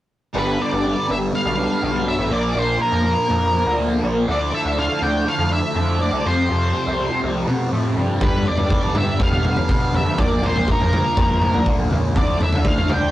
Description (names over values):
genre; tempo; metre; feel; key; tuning
psychedelic rock; 122 BPM; 4/4; straight; unclear; A4 = 440 Hz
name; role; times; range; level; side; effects
percussive tonewheel organ; sustained chords; 0.3-13.1 s; F3 to Bb4; -28 LUFS; right 2 dB; slow rotary speaker, overdrive, chorus vibrato
thick fuzz guitar; riff; 0.3-13.1 s; F2 to D4; -23 LUFS; left 1 dB; distortion, phaser
octave-fuzz lead guitar; melody; 0.4-13.1 s; Bb4 to G5; -23 LUFS; equal; distortion, slapback echo
gritty driven synth bass; bass; 0.4-13.1 s; G1 to B2; -22 LUFS; equal; distortion
vintage drum kit; drums; 8.2-13.0 s; kick drum, toms; -20 LUFS; equal; none
congas; percussion; 8.3-13.0 s; none; -31 LUFS; right 1 dB; none
room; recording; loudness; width
moderate studio reverb, RT60 0.5 s; rough rehearsal-room recording, warm saturation; -17 LUFS; side -14 dB against mid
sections
0.3-13.1 A section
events
none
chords
0.3 Gadd9; 2.3 Bb; 4.3 Dmadd9; 6.2 Fadd9; 8.2 Gadd9; 10.2 Bb; 12.2 Dmadd9